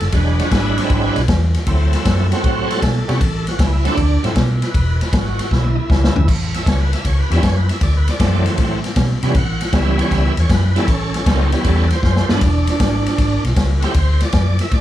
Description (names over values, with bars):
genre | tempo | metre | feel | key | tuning
electric blues shuffle | 156 BPM | 4/4 | swing 68% on 8ths | unclear | A4 = 440 Hz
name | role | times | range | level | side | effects
bright tonewheel organ | accompaniment | 0.0-14.8 s | D#3 to F#5 | -21 LUFS | right 3 dB | slow rotary speaker, overdrive, chorus vibrato
vintage muted fingered electric bass | bass | 0.0-14.8 s | E1 to C3 | -17 LUFS | equal | none
vintage drum kit | drums | 0.0-14.8 s | crash cymbal, kick drum, ride cymbal, snare drum, toms | -18 LUFS | left 1 dB | none
room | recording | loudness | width
light reverb | small room ambience | -14 LUFS | side -13 dB against mid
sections
0.0-6.3 A section; 6.3-14.8 A section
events
drum fill 5.5-6.3, 12.0-12.4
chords
0.1 E9; 1.7 D9; 3.2 A; 4.0 D9; 4.7 Eadd9; 6.3 A9; 7.8 D9; 9.4 A9; 12.4 E9; 14.0 D7